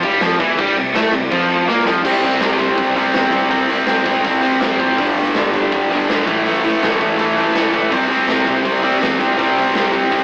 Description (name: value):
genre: punk rock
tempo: 163 BPM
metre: 4/4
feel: straight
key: C major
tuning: A4 = 441 Hz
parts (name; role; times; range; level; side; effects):
- crunchy overdriven guitar; riff; 0.0-10.2 s; G2 to C4; -23 LUFS; equal; none
- distorted electric guitar; riff; 0.0-10.2 s; G2 to C4; -22 LUFS; equal; distortion
- distorted electric guitar; riff; 0.0-10.2 s; G2 to C4; -22 LUFS; equal; overdrive
- fuzz picked electric bass; bass; 0.0-10.2 s; F1 to Bb2; -28 LUFS; equal; overdrive
- raw garage drum kit; drums; 0.0-10.2 s; crash cymbal, hi-hat, kick drum, snare drum; -23 LUFS; equal; none
room: moderate studio ambience, RT60 0.5 s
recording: rough rehearsal-room recording, warm saturation, AM radio sound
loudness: -16 LUFS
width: mono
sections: 0.0-2.0 A section; 2.0-10.2 B section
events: drum fill 1.7-2.0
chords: 0.0 C; 2.0 C5; 5.0 G5; 6.3 A5; 7.9 C5